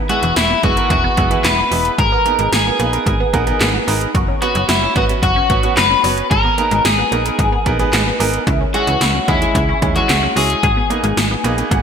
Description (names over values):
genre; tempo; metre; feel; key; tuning
synth-pop; 111 BPM; 4/4; straight; G# minor; A4 = 441 Hz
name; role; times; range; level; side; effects
resonant blip pluck; arpeggios; 0.0-11.8 s; E3 to G#4; -24 LUFS; right 1 dB; phaser, ping-pong delay
electric guitar at the edge of break-up; melody; 0.1-11.8 s; E4 to B4; -17 LUFS; left 2 dB; lush chorus, ping-pong delay
bright baby grand piano; accompaniment; 0.1-11.8 s; G#3 to A#5; -21 LUFS; right 4 dB; none
80s electronic pad drums; drums; 0.1-11.8 s; handclaps, hi-hat, kick drum, snare drum; -18 LUFS; equal; overdrive, gated reverb
slap-like FM bass; bass; 0.2-11.8 s; E1 to D#2; -20 LUFS; equal; none
room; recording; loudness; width
moderate lush hall reverb, RT60 2.1 s; bright 1980s-style digital production; -13 LUFS; side -7 dB against mid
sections
0.0-11.8 A section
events
grand piano fill 3.1-4.1, 11.2-11.8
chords
0.0 E; 2.0 G#madd9; 4.1 F#sus4; 6.3 G#madd9; 8.5 C#m; 10.6 G#madd9